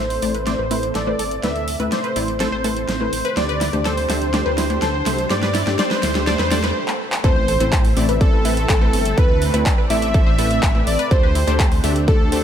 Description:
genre	progressive house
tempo	124 BPM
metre	4/4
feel	straight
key	A minor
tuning	A4 = 439 Hz
part	soft supersaw	melody	0.0-12.4 s	A4 to E5	-24 LUFS	equal	cassette tape, sidechain pumping, low-pass filter, digital delay
part	lush unison pad	sustained chords	0.0-12.4 s	A3 to E5	-29 LUFS	right 1 dB	chorus, phaser, sidechain pumping
part	wide unison pluck	stabs	0.0-12.4 s	A3 to E5	-25 LUFS	left 2 dB	sidechain pumping
part	dark detuned saw bass	bass	0.0-12.4 s	G1 to G2	-23 LUFS	equal	sidechain pumping
part	riser, swell and impact	sound effects	2.5-9.2 s	none	-32 LUFS	equal	none
part	big-room dance drum kit	drums	0.1-12.4 s	handclaps, hi-hat, snare drum	-25 LUFS	equal	none
part	tight sequenced synth	arpeggios	0.3-11.9 s	E4 to D5	-28 LUFS	left 1 dB	chorus, phaser, sidechain pumping, dub echo
part	soft synth bell	second line	7.2-12.4 s	A4 to E5	-27 LUFS	right 2 dB	chorus, phaser, sidechain pumping
part	electronic kick drum	drums	7.2-12.2 s	none	-16 LUFS	equal	none
room	light reverb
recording	none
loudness	-16 LUFS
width	side -9 dB against mid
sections	0.0-7.2 A section; 7.2-12.4 B section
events	build-up 0.0-7.2; drum fill 0.0-6.8, 6.9-7.2; filter sweep on synth pluck 0.0-7.2; filter sweep on supersaw synth 0.0-7.2; swell 6.3-7.2; stop 6.8-7.2; drop 7.2-12.4; impact 7.2-9.2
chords	0.0 Amadd9; 3.4 D7sus4; 7.2 Amadd9; 11.1 D7sus4

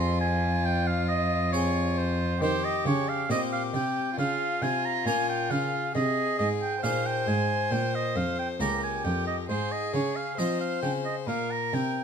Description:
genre	classical, baroque-style sonata movement with continuo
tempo	68 BPM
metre	4/4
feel	rubato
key	F minor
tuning	A4 = 440 Hz
part	rich violin	melody	0.0-12.0 s	F4 to C5	-33 LUFS	left 7 dB	none
part	warm oboe	second line	0.0-12.0 s	C5 to C6	-29 LUFS	right 4 dB	none
part	harpsichord	accompaniment	0.0-12.0 s	Db2 to Db5	-33 LUFS	left 2 dB	none
part	rich cello	bass	0.0-12.0 s	Db2 to F3	-30 LUFS	right 1 dB	none
room	moderate stone room reverb, RT60 1.3 s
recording	none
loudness	-25 LUFS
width	side -7 dB against mid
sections	0.0-12.0 A section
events	none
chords	0.0 Fm; 2.4 Cm; 4.2 Bbm; 5.9 Ab; 7.7 Gdim; 9.5 Fm/Ab; 11.3 Bb5

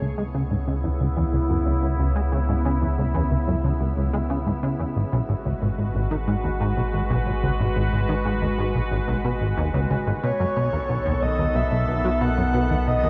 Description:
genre	ambient, sequencer-driven space music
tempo	91 BPM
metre	4/4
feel	straight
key	C# minor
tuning	A4 = 440 Hz
part	evolving wavetable pad	sustained chords	0.0-13.1 s	C#3 to B4	-30 LUFS	equal	chorus, built-in reverb, shimmer reverb
part	plucky analog bass	riff	0.0-13.1 s	G#1 to G#3	-27 LUFS	equal	ensemble chorus, tape echo
part	warm sub bass	bass	0.0-13.1 s	G#1 to C#2	-29 LUFS	equal	none
part	breathy flute-like synth lead	melody	10.2-13.1 s	C#5 to F#5	-27 LUFS	equal	tremolo, lush chorus, shimmer reverb, tape echo
room	moderate lush hall reverb, RT60 3.0 s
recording	cassette tape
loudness	-23 LUFS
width	mono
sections	0.0-13.1 A section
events	none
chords	0.0 C#m7; 5.0 G#m7; 10.2 B7

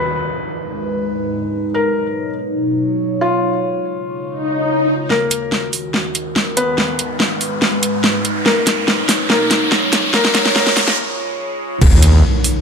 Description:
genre	heavy wobble dubstep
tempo	143 BPM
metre	4/4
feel	half-time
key	Eb minor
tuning	A4 = 440 Hz
part	felt-muted upright piano	melody	0.0-11.0 s	Bb3 to Cb5	-21 LUFS	left 3 dB	ping-pong delay
part	evolving wavetable pad	sustained chords	0.0-12.6 s	Eb2 to C#5	-21 LUFS	right 1 dB	phaser, built-in reverb, sidechain pumping
part	downlifter, swell, riser and impact	sound effects	0.0-1.7, 4.4-12.6 s	none	-20 LUFS	equal	none
part	dubstep drum kit	drums	5.1-12.5 s	crash cymbal, hi-hat, snare drum	-16 LUFS	equal	none
part	wobble bass	bass	11.8-12.2 s	Eb1 to Eb2	-10 LUFS	equal	chorus, overdrive
part	electronic kick drum	drums	11.8-11.9 s	none	-10 LUFS	equal	none
room	light reverb, digital ambience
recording	high-pass filter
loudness	-14 LUFS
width	side -6 dB against mid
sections	0.0-5.1 A section; 5.1-11.8 B section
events	filter sweep on ambient pad 0.0-5.1, 5.1-11.8; swell 4.4-5.1; build-up 5.1-11.8; drum fill 5.1-11.0; riser 5.1-11.0; break 11.0-11.8; impact 11.8-12.6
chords	0.1 Abm; 1.7 Badd9; 3.4 Db; 5.1 Ebm; 6.8 Abm; 8.5 Badd9; 10.1 Db; 11.8 Eb5

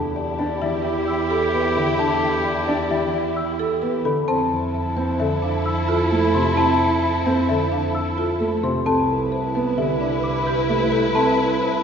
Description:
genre	classical, minimalist pattern music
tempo	131 BPM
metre	5/4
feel	straight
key	F lydian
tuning	A4 = 440 Hz
part	clear clarinet	second line	0.0-11.8 s	E4 to G4	-27 LUFS	right 1 dB	none
part	warm studio string section	sustained chords	0.0-11.8 s	E4 to B4	-26 LUFS	left 1 dB	none
part	rich double bass	bass	0.0-11.8 s	C2 to F2	-27 LUFS	right 2 dB	none
part	folk marimba with medium mallets	melody	0.2-11.8 s	G4 to F5	-28 LUFS	left 4 dB	none
part	dark concert grand piano	accompaniment	0.4-11.0 s	C3 to D4	-27 LUFS	equal	none
part	marimba with medium mallets	arpeggios	0.4-11.4 s	C4 to D5	-26 LUFS	right 4 dB	none
part	celesta	arpeggios	0.6-11.4 s	E5 to E6	-27 LUFS	left 3 dB	none
room	wet concert hall reverb, RT60 1.8 s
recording	recorded in a church or concert hall, nothing above 7.5 kHz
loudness	-18 LUFS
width	side -7 dB against mid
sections	0.0-11.8 A section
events	none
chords	0.0 Em7; 4.3 Fmaj7; 8.9 Cmaj9

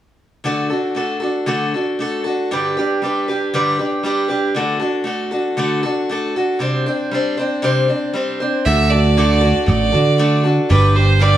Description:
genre	rock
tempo	117 BPM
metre	4/4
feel	straight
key	D mixolydian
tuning	A4 = 440 Hz
part	picked steel-string acoustic guitar	accompaniment	0.4-11.4 s	G2 to C5	-17 LUFS	equal	none
part	clear fiddle	melody	8.7-11.4 s	B4 to E5	-18 LUFS	right 5 dB	slapback echo
part	picked electric bass	bass	8.7-11.4 s	G1 to D3	-14 LUFS	right 1 dB	none
room	light reverb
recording	studio ambience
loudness	-15 LUFS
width	side -12 dB against mid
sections	0.5-8.7 A section; 8.7-11.4 B section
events	none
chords	0.5 D; 2.5 G; 4.6 D; 6.6 Csus2; 8.7 D; 10.7 G

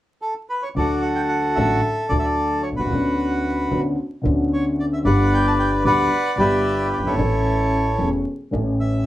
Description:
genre	tango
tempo	112 BPM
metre	4/4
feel	rubato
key	D major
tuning	A4 = 440 Hz
part	bandoneon	melody	0.2-9.1 s	E4 to A5	-21 LUFS	equal	none
part	dark upright piano	accompaniment	0.7-9.1 s	E1 to A4	-21 LUFS	left 1 dB	none
part	upright bass	bass	0.8-9.1 s	E1 to D2	-25 LUFS	equal	none
room	wet studio ambience, RT60 0.5 s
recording	band playing live in one room, vinyl crackle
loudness	-18 LUFS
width	side -14 dB against mid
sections	0.8-9.1 A section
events	none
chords	0.0 N.C.; 0.8 D; 2.9 Bmadd9/D; 5.1 G; 7.2 A

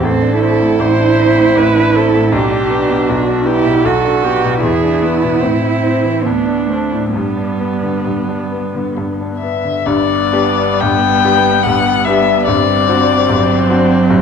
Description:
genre	classical, slow romantic movement for piano quartet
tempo	62-81 BPM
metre	3/4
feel	rubato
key	G major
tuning	A4 = 438 Hz
part	warm cello	second line	0.0-14.2 s	F#3 to F#4	-16 LUFS	right 6 dB	none
part	bright grand piano	accompaniment	0.0-14.2 s	G1 to G4	-16 LUFS	left 2 dB	none
part	warm viola	accompaniment	0.0-14.2 s	B3 to C5	-18 LUFS	right 2 dB	none
part	warm violin	melody	0.8-14.0 s	B4 to G5	-15 LUFS	left 10 dB	none
room	wet scoring stage reverb, RT60 1.6 s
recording	dark, warm production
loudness	-11 LUFS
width	side -6 dB against mid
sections	0.0-9.9 A section; 9.9-14.2 B section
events	none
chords	0.0 D5/A; 2.3 G/B; 4.6 E7; 5.4 Am; 6.2 D5; 7.2 G; 12.5 D7/G

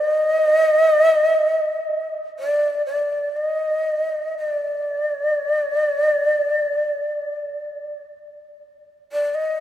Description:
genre	japanese traditional, Japanese chamber music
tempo	free time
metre	none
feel	none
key	unclear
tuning	A4 = 440 Hz
part	breathy mellow shakuhachi	solo	0.0-9.6 s	D5 to Eb5	-18 LUFS	equal	none
room	wet cathedral reverb, RT60 4.5 s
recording	minimal, uncompressed stereo recording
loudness	-18 LUFS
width	side -11 dB against mid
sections	0.0-8.6 A section; 8.6-9.6 B section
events	none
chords	none

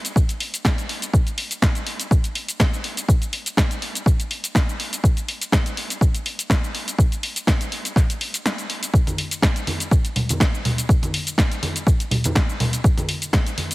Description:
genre	house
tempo	123 BPM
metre	4/4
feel	swing 54% on 16ths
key	none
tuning	none
part	punchy analog drum machine	drums	0.0-13.7 s	cabasa, hi-hat, snare drum	-24 LUFS	equal	none
part	electronic kick drum	drums	0.2-13.4 s	none	-18 LUFS	equal	none
part	tambourine and congas	percussion	8.9-13.7 s	none	-24 LUFS	equal	sidechain pumping on perc, low-pass filter on perc
room	light reverb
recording	heavily compressed radio sound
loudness	-19 LUFS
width	side -20 dB against mid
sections	0.0-13.7 A section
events	break 8.5-8.9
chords	none

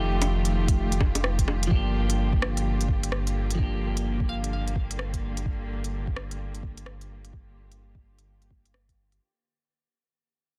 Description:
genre	future garage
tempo	128 BPM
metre	4/4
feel	swing 63% on 16ths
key	G minor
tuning	A4 = 441 Hz
part	clean electric guitar	accompaniment	0.0-4.8 s	F3 to G4	-34 LUFS	equal	sidechain pumping, digital delay
part	muted studio string section	sustained chords	0.0-9.2 s	D3 to G4	-38 LUFS	equal	sidechain pumping
part	warm sub bass	bass	0.0-9.2 s	F1 to G1	-31 LUFS	equal	tube saturation, sidechain pumping
part	organic electronic drum kit	drums	0.2-9.2 s	bongos, hi-hat, rim click	-33 LUFS	equal	small room ambience, soft clipping on snare
part	electronic kick drum	drums	0.7-9.0 s	none	-28 LUFS	equal	small room ambience
part	glassy wavetable pluck	melody	4.3-5.2 s	F5	-44 LUFS	equal	chorus, vintage 12-bit sampler grit, dub echo
room	digital ambience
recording	dense, heavily limited modern master, vinyl crackle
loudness	-27 LUFS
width	mono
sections	0.0-1.7 A section; 1.7-9.2 B section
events	fade-out 1.7-9.2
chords	0.0 F9; 1.7 Gm7

